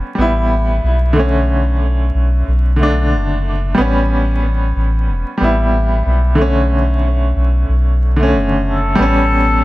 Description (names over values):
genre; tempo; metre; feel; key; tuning
trip hop; 92 BPM; 4/4; swing 59% on 16ths; B minor; A4 = 440 Hz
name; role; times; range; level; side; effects
bright upright piano; accompaniment; 0.0-9.6 s; D3 to E4; -17 LUFS; equal; tremolo, tape echo
soft dub sub bass; bass; 0.0-9.6 s; E1 to B1; -14 LUFS; equal; tube saturation
trumpet with plunger mute; melody; 8.7-9.6 s; A4; -16 LUFS; left 2 dB; none
deep dark ambient pad; sustained chords; 9.3-9.6 s; B3 to C#5; -27 LUFS; left 3 dB; none
room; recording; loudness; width
light reverb, small room ambience; vinyl crackle; -12 LUFS; side -18 dB against mid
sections
0.0-9.0 A section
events
none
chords
0.0 A9; 1.2 Bm9; 3.8 A9; 6.4 Bm9; 9.0 A9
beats
0.50 | 1.16 1.81 2.46 3.11 | 3.76 4.42 5.07 5.72 | 6.37 7.03 7.68 8.33 | 8.98 9.63